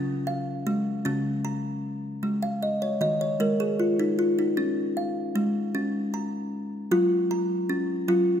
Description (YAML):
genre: world meditative, meditative tuned percussion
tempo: 51 BPM (dotted quarters)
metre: 6/8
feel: straight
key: Db major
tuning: A4 = 440 Hz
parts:
  - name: kalimba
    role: solo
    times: 0.0-8.4 s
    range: Db3 to Eb6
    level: -24 LUFS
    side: equal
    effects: none
room: wet echo chamber reverb, RT60 2.2 s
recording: none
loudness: -24 LUFS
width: side -9 dB against mid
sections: 0.0-8.4 A section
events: kalimba fill 2.4-4.6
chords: 0.0 Db; 2.2 Ab5; 4.6 Db; 6.9 Gb